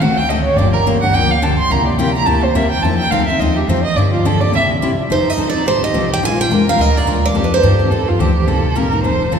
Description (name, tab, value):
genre	acoustic string swing (jazz manouche)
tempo	213 BPM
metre	4/4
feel	swing 57% on 8ths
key	F mixolydian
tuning	A4 = 440 Hz
part	warm violin	second line	0.0-9.4 s	Eb4 to C6	-18 LUFS	right 2 dB	none
part	picked steel-string acoustic guitar	accompaniment	0.0-9.4 s	C3 to Bb4	-18 LUFS	left 3 dB	none
part	upright bass	bass	0.0-9.4 s	F1 to G2	-18 LUFS	equal	none
part	picked steel-string acoustic guitar	melody	5.1-8.6 s	B4 to Ab5	-18 LUFS	right 2 dB	none
room	wet cathedral reverb, RT60 3.9 s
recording	recorded in a church or concert hall, small room ambience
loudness	-12 LUFS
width	side -7 dB against mid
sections	0.0-5.1 A section; 5.1-9.4 B section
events	violin solo 0.0-5.1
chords	0.0 D7; 0.6 Gm7; 1.7 C7; 2.8 F7; 4.0 Gm7; 4.5 C7; 5.1 F7; 6.2 Bb7; 7.3 F7; 8.5 Cm7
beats	0.01 0.29 | 0.57 0.85 1.14 1.42 | 1.70 1.98 2.27 2.55 | 2.83 3.11 3.40 3.68 | 3.96 4.24 4.52 4.81 | 5.09 5.37 5.65 5.93 | 6.22 6.50 6.78 7.06 | 7.35 7.63 7.91 8.19 | 8.47 8.76 9.04 9.32